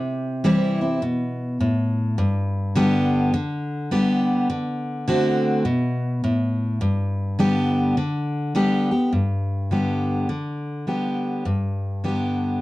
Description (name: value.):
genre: country.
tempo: 104 BPM.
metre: 4/4.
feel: swing 63% on 8ths.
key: G major.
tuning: A4 = 440 Hz.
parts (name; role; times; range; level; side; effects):
picked steel-string acoustic guitar; solo; 0.0-12.6 s; G2 to G4; -20 LUFS; equal; none.
room: light reverb.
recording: dark, warm production.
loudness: -20 LUFS.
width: side -18 dB against mid.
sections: 0.0-9.1 A section; 9.1-12.6 B section.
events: none.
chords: 0.0 C; 2.2 G; 4.5 D7; 6.8 G.